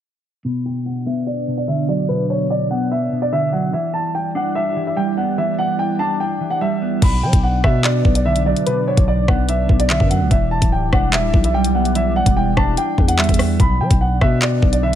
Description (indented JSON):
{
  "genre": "hip hop, drill",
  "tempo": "146 BPM",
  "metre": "4/4",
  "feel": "half-time",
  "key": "B minor",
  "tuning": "A4 = 442 Hz",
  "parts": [
    { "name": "mellow electric guitar", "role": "accompaniment", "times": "0.4-15.0 s", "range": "B2 to D4", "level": "-21 LUFS", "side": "right 1 dB", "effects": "spring reverb, low-pass filter" },
    { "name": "dark analog pad", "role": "sustained chords", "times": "0.4-15.0 s", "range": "G3 to D5", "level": "-28 LUFS", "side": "left 1 dB", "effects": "chorus, low-pass filter" },
    { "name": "dark concert grand piano", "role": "melody", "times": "0.5-15.0 s", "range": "B4 to B5", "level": "-21 LUFS", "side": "equal", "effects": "low-pass filter, ping-pong delay" },
    { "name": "growling 808-style bass", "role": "bass", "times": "7.0-15.0 s", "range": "D1 to F#3", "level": "-19 LUFS", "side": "equal", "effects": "none" },
    { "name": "drill drum kit", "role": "drums", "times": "7.0-14.8 s", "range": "crash cymbal, handclaps, hi-hat, kick drum, rim click", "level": "-16 LUFS", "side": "equal", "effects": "overdrive, vintage 12-bit sampler grit" }
  ],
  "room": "light reverb",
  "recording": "none",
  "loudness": "-15 LUFS",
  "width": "side -10 dB against mid",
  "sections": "0.4-7.0 A section; 7.0-15.0 B section",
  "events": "filter sweep 0.4-7.0",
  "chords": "0.4 Bm; 3.7 Em7; 7.0 Bm; 10.3 Em7; 13.6 Bm",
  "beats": "| 0.45 0.86 1.27 1.68 | 2.09 2.50 2.91 3.32 | 3.73 4.14 4.56 4.97 | 5.38 5.79 6.20 6.61 | 7.02 7.43 7.84 8.26 | 8.67 9.08 9.49 9.90 | 10.31 10.72 11.13 11.54 | 11.95 12.36 12.78 13.19 | 13.60 14.01 14.42 14.83"
}